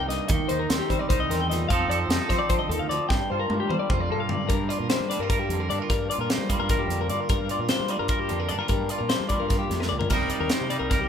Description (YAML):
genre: math rock and midwest emo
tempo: 300 BPM (eighths)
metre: 7/8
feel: straight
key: G minor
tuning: A4 = 440 Hz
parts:
  - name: twangy electric guitar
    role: accompaniment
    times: 0.0-11.1 s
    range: G2 to Bb4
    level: -28 LUFS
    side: right 4 dB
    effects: none
  - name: twelve-string electric guitar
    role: arpeggios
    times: 0.0-11.1 s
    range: G4 to G5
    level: -28 LUFS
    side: left 8 dB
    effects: none
  - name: fuzz fingered electric bass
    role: bass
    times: 0.0-11.1 s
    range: C2 to G3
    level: -31 LUFS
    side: equal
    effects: overdrive
  - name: crisp fusion drum kit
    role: drums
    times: 0.1-11.0 s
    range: crash cymbal, hi-hat, kick drum, snare drum, toms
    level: -27 LUFS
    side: equal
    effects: none
room: light reverb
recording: band playing live in one room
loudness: -22 LUFS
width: side -8 dB against mid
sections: 0.0-4.5 A section; 4.5-11.1 B section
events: drum fill 3.1-4.5, 9.8-10.1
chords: 0.3 Eb6; 1.7 F7; 3.1 Gm7; 10.1 Cm7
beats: 0.10 | 0.29 0.49 0.69 0.90 1.09 1.29 1.49 | 1.69 1.89 2.09 2.29 2.49 2.69 2.89 | 3.10 3.29 3.50 3.69 3.90 4.10 4.30 | 4.50 4.70 4.90 5.10 5.30 5.50 5.70 | 5.90 6.10 6.30 6.50 6.70 6.90 7.10 | 7.30 7.50 7.70 7.90 8.10 8.30 8.50 | 8.70 8.90 9.10 9.30 9.50 9.70 9.90 | 10.11 10.30 10.51 10.71 10.91